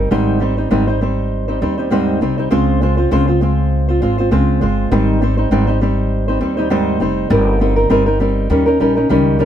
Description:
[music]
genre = acoustic pop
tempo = 100 BPM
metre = 4/4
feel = swing 55% on 16ths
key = Ab major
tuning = A4 = 442 Hz
[part]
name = fingerpicked old ladder-braced acoustic guitar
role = accompaniment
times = 0.0-9.4 s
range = Ab2 to C5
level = -15 LUFS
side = right 1 dB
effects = none
[part]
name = upright bass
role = bass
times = 0.0-9.4 s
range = F1 to Eb2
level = -18 LUFS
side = left 1 dB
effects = none
[sound]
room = light reverb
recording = none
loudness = -13 LUFS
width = side -10 dB against mid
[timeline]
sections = 0.0-9.4 A section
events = none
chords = 0.1 Abmaj7; 2.5 Dbmaj7; 4.9 Abmaj7; 7.3 Cm7/G; 8.5 Eb7

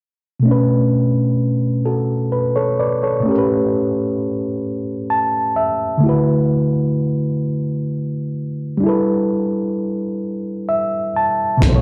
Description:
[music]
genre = slow six-eight R&B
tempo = 43 BPM (dotted quarters)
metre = 6/8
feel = straight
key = B minor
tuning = A4 = 440 Hz
[part]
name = reed electric piano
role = accompaniment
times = 0.4-11.8 s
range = A2 to A5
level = -19 LUFS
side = equal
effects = none
[part]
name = smooth synth bass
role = bass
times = 11.6-11.8 s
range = B1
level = -18 LUFS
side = equal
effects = none
[part]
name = cloth-damped thuddy drum kit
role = drums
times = 11.6-11.8 s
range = hi-hat, kick drum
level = -17 LUFS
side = equal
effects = none
[sound]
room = light reverb, small room reverb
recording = live gig heard through the venue's PA, club reverb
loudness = -19 LUFS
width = mono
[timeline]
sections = 0.5-11.6 A section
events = reed electric piano fill 4.6-6.0, 10.2-11.6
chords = 0.5 Bm9; 3.2 A9; 6.0 D69; 8.8 G69

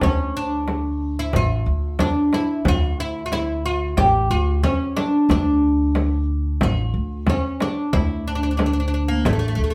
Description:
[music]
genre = Arabic maqam ensemble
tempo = 91 BPM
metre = 4/4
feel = straight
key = D maqam suznak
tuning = A4 = 438 Hz
[part]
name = oud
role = melody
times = 0.0-9.7 s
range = A3 to G4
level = -24 LUFS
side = equal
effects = none
[part]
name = upright bass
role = bass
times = 0.0-9.7 s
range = A1 to D2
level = -25 LUFS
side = equal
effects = none
[part]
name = frame drum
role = percussion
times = 0.0-9.4 s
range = none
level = -25 LUFS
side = equal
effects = none
[sound]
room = wet studio reverb, RT60 0.6 s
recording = heard from further back in the room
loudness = -21 LUFS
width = mono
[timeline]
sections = 0.0-9.7 A section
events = none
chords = none

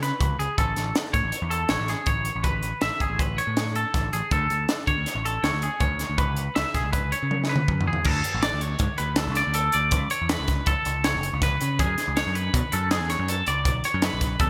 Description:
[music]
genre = math rock and midwest emo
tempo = 161 BPM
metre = 5/4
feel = straight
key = A major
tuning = A4 = 440 Hz
[part]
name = twangy electric guitar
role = arpeggios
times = 0.0-14.5 s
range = G#4 to E5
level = -29 LUFS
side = equal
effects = lush chorus
[part]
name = growling picked electric bass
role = bass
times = 0.0-14.5 s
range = F#1 to D3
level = -30 LUFS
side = equal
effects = overdrive
[part]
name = crisp fusion drum kit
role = drums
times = 0.0-14.5 s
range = crash cymbal, hi-hat, kick drum, snare drum, toms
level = -29 LUFS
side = equal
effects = none
[sound]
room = moderate lush hall reverb, RT60 1.7 s, small room ambience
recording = bright 1980s-style digital production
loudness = -25 LUFS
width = mono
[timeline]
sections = 0.0-8.1 A section; 8.1-14.5 B section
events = drum fill 7.3-8.1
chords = 0.0 C#7(no3); 0.6 Amaj9; 4.3 D5; 6.2 C#m7; 8.1 D5; 9.9 Aadd9/C#; 11.8 F#madd9; 13.7 Bmadd9

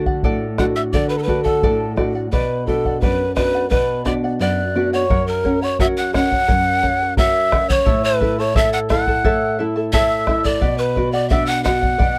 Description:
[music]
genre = andean folk, Andean ensemble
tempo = 87 BPM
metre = 2/4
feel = straight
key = B minor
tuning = A4 = 440 Hz
[part]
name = charango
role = accompaniment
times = 0.0-12.2 s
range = E4 to A5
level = -27 LUFS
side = equal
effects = none
[part]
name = nylon-string guitar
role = accompaniment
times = 0.0-12.2 s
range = F#2 to A4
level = -24 LUFS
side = equal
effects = none
[part]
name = bombo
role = percussion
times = 0.1-12.2 s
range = none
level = -23 LUFS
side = equal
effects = none
[part]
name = breathy mellow pan flute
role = melody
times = 0.6-12.2 s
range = A4 to F#5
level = -22 LUFS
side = equal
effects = none
[part]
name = mellow quena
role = second line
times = 0.6-12.2 s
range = A5 to F#6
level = -28 LUFS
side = equal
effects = none
[sound]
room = light reverb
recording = dry, close 1970s-style studio recording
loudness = -18 LUFS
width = mono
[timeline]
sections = 0.0-5.1 A section; 5.1-12.2 B section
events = none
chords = 0.0 D; 2.3 Bm; 5.1 F#; 7.9 A; 10.6 Bm

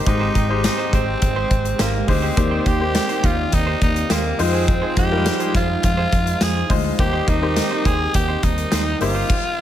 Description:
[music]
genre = 1980s-style pop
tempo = 104 BPM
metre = 4/4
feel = straight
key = Eb major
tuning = A4 = 438 Hz
[part]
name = bright concert grand piano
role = accompaniment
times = 0.0-9.3 s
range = Ab2 to C5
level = -25 LUFS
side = left 4 dB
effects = none
[part]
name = lush unison pad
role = sustained chords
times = 0.0-9.3 s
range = Eb3 to G4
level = -30 LUFS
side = right 1 dB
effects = chorus
[part]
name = direct-recorded clean electric guitar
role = riff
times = 0.0-9.3 s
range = Eb4 to C5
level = -30 LUFS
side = right 6 dB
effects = lush chorus, digital delay
[part]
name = mellow synth brass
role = stabs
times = 0.0-9.3 s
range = G3 to D5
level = -30 LUFS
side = right 2 dB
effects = chorus, digital delay
[part]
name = breathy tenor saxophone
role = melody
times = 0.1-9.6 s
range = Bb3 to Ab4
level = -24 LUFS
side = equal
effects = digital delay
[part]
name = vintage muted fingered electric bass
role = bass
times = 0.1-9.2 s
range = G1 to F2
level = -23 LUFS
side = equal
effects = none
[part]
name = big rock drum kit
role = drums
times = 0.1-9.4 s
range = crash cymbal, hi-hat, kick drum, snare drum, tambourine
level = -21 LUFS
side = equal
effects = gated reverb
[sound]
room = studio reverb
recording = none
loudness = -16 LUFS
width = side -11 dB against mid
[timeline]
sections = 0.0-9.6 A section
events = none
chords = 0.1 Abmaj7; 2.4 Eb6; 4.4 Fm7; 7.0 Eb6

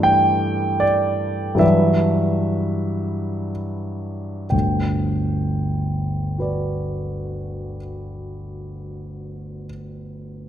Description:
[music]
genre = classical, impressionist solo piano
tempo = 27-40 BPM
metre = 3/4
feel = rubato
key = G major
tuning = A4 = 440 Hz
[part]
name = clear concert grand piano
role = solo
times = 0.0-10.5 s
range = G1 to G5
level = -20 LUFS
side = equal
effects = none
[sound]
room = moderate concert hall reverb, RT60 1.7 s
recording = none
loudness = -19 LUFS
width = side -10 dB against mid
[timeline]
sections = 0.0-4.5 A section; 4.5-10.4 B section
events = slowing down 0.0-4.5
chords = 0.0 G69; 1.6 Em9/G; 4.5 Gmaj7

